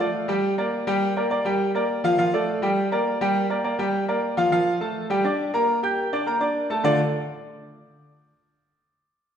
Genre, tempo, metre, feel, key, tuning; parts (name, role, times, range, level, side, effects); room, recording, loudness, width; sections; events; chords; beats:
latin; 206 BPM; 4/4; straight; D minor; A4 = 441 Hz
clear concert grand piano; solo; 0.0-7.0 s; D3 to G6; -21 LUFS; equal
wet recital hall reverb, RT60 1.5 s; recorded in a church or concert hall; -21 LUFS; side -8 dB against mid
0.0-4.5 A section; 4.5-6.8 B section; 6.8-8.0 C section
0.4 Gm; 2.2 Dm; 2.8 Gm; 4.5 F; 5.1 Gm; 5.7 Bb6; 6.3 Bbmaj7; 6.8 Dm
0.15 0.45 0.74 | 1.03 1.32 1.61 1.90 | 2.19 2.48 2.77 3.06 | 3.36 3.65 3.94 4.23 | 4.52 4.81 5.10 5.39 | 5.68 5.98 6.27 6.56 | 6.85